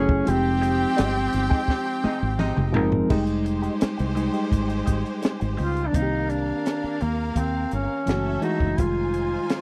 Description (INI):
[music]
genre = lush 1970s-style soul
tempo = 84 BPM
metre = 4/4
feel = straight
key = unclear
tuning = A4 = 440 Hz
[part]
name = warm duduk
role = melody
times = 0.0-9.6 s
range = Bb3 to F4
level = -28 LUFS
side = equal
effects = none
[part]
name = barky reed electric piano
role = accompaniment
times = 0.0-9.6 s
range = Eb3 to Bb4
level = -30 LUFS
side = equal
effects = none
[part]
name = mellow French horn section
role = sustained chords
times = 0.0-3.1 s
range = F3 to G#4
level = -41 LUFS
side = equal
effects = none
[part]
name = direct-recorded clean electric guitar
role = riff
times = 0.0-5.8 s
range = Ab3 to Ab4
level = -36 LUFS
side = equal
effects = wah
[part]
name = warm horn section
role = stabs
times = 0.0-2.9 s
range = C3 to Eb4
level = -35 LUFS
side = equal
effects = none
[part]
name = fingered electric bass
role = bass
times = 0.0-9.4 s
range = F1 to Eb2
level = -29 LUFS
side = equal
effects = none
[part]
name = compact cocktail drum kit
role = drums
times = 0.1-9.6 s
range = crash cymbal, hi-hat, kick drum, snare drum, toms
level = -27 LUFS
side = equal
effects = none
[part]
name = rich symphonic violin section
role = second line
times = 0.3-9.6 s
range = Ab3 to Ab5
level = -37 LUFS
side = equal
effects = none
[sound]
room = little or no reverb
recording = dry, close 1970s-style studio recording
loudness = -24 LUFS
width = mono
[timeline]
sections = 0.0-3.1 A section; 3.1-5.9 B section; 5.9-9.6 C section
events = drum fill 1.7-3.1; reed electric piano solo 3.1-5.9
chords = 0.3 Fm9; 5.9 Cm9; 8.1 F#m9; 8.8 Fm9